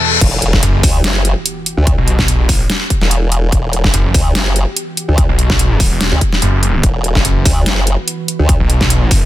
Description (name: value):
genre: heavy wobble dubstep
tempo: 145 BPM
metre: 4/4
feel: swing 54% on 16ths, half-time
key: E minor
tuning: A4 = 440 Hz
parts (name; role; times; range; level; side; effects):
- lush unison pad; sustained chords; 0.0-9.3 s; E2 to B4; -27 LUFS; right 2 dB; none
- reverse cymbal and impact; sound effects; 0.0-1.9 s; none; -18 LUFS; left 5 dB; none
- formant-sweep wobble bass; bass; 0.2-8.6 s; E1 to D2; -14 LUFS; equal; chorus, overdrive
- dubstep drum kit; drums; 0.2-9.2 s; crash cymbal, hi-hat, snare drum; -17 LUFS; equal; overdrive
- electronic kick drum; drums; 0.2-9.2 s; none; -14 LUFS; equal; overdrive
- snarling distorted saw bass; bass; 0.6-9.2 s; E1 to B1; -14 LUFS; equal; distortion, overdrive
room: little or no reverb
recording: dense, heavily limited modern master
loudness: -11 LUFS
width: side -14 dB against mid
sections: 0.2-9.3 A section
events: break 0.0; reverse cymbal 0.0; drop 0.2-9.3; impact 0.2-1.9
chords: 0.2 Emadd9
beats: | 0.21 0.63 1.04 1.46 | 1.87 2.28 2.70 3.11 | 3.52 3.94 4.35 4.76 | 5.18 5.59 6.01 6.42 | 6.83 7.25 7.66 8.07 | 8.49 8.90